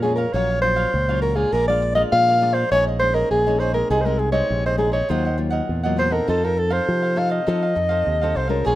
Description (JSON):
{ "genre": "samba", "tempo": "101 BPM", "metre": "4/4", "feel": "straight", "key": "unclear", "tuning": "A4 = 443 Hz", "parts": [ { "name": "breathy soprano saxophone", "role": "melody", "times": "0.0-8.8 s", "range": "Ab4 to F5", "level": "-20 LUFS", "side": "equal", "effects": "none" }, { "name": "cavaquinho", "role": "accompaniment", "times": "0.0-8.8 s", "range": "Eb4 to Bb5", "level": "-29 LUFS", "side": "right 4 dB", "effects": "none" }, { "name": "nylon-string guitar", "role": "accompaniment", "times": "0.0-8.8 s", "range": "F2 to A4", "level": "-28 LUFS", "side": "left 5 dB", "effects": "none" }, { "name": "fingered electric bass with an envelope filter", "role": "bass", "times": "0.0-8.8 s", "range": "Bb1 to F3", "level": "-23 LUFS", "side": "equal", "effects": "none" } ], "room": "light reverb, small room ambience", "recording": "rough home demo mix", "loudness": "-18 LUFS", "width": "side -15 dB against mid", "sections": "0.0-8.8 A section", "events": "none", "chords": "0.3 Gbmaj7/Bb; 1.5 Bb7; 2.7 Eb7sus4/Bb; 3.9 Ab/C; 5.1 Ebmadd9; 6.3 F7", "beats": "0.34 0.94 | 1.53 2.12 2.72 3.31 | 3.91 4.50 5.10 5.69 | 6.28 6.88 7.47 8.07 | 8.66" }